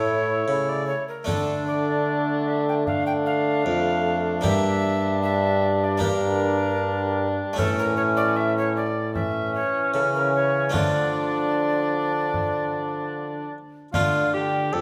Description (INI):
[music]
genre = classical, renaissance-style consort dance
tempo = 76 BPM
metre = 4/4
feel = straight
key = D harmonic minor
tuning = A4 = 440 Hz
[part]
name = alto recorder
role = melody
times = 0.0-14.8 s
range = A4 to A5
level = -30 LUFS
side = equal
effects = none
[part]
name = mellow cor anglais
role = second line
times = 0.0-14.8 s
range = C#4 to A4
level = -29 LUFS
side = equal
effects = none
[part]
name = dark bassoon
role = accompaniment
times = 0.0-14.8 s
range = E3 to G4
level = -32 LUFS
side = equal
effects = none
[part]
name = harpsichord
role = accompaniment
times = 0.0-14.8 s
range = F2 to A4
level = -33 LUFS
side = equal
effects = none
[part]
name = warm trombone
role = bass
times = 0.0-14.8 s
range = F2 to D3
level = -29 LUFS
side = equal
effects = none
[part]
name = frame drum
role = percussion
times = 1.3-14.3 s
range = none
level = -32 LUFS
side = equal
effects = none
[sound]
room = wet recital hall reverb, RT60 1.4 s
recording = none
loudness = -23 LUFS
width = mono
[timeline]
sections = 0.0-13.9 A section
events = none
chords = 0.0 A; 1.3 Dm; 4.4 Gm; 7.6 A; 10.7 Dm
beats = 0.48 | 1.28 2.08 2.87 3.66 | 4.45 5.23 6.02 6.80 | 7.59 8.38 9.16 9.95 | 10.75 11.55 12.35 13.15 | 13.94 14.73